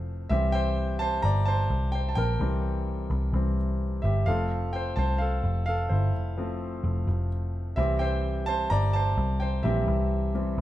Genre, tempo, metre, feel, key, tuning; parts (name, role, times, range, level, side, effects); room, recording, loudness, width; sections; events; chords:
piano-driven pop; 128 BPM; 4/4; straight; A4 = 441 Hz
clear grand piano; accompaniment; 0.0-10.6 s; E3 to Bb5; -29 LUFS; equal
vintage muted picked electric bass; bass; 0.0-10.6 s; F1 to C2; -26 LUFS; equal
moderate large studio reverb, RT60 0.9 s; band playing live in one room; -24 LUFS; side -14 dB against mid
0.0-10.6 A section
grand piano solo 0.0-10.6
0.3 C; 4.3 F; 7.8 C